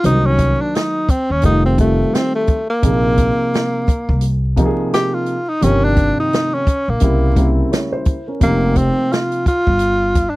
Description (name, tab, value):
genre	hip hop, jazz-hop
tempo	86 BPM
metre	4/4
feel	swing 59% on 16ths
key	unclear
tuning	A4 = 440 Hz
part	breathy tenor saxophone	melody	0.0-10.4 s	A3 to G4	-18 LUFS	equal	none
part	dark concert grand piano	accompaniment	0.0-9.4 s	C3 to Db5	-20 LUFS	equal	none
part	upright bass	bass	0.0-10.3 s	F1 to Eb2	-17 LUFS	equal	none
part	open jazz drum kit	drums	0.0-10.3 s	hi-hat, kick drum, snare drum	-17 LUFS	equal	none
room	little or no reverb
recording	dry, close 1970s-style studio recording, vinyl crackle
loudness	-14 LUFS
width	side -19 dB against mid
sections	0.0-8.4 A section; 8.4-10.4 B section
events	tenor saxophone solo 0.0-8.4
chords	0.0 Cm7b5; 1.4 F7; 2.8 Bb9sus4; 5.6 Eb13/G; 7.0 C7b9; 8.4 F9sus4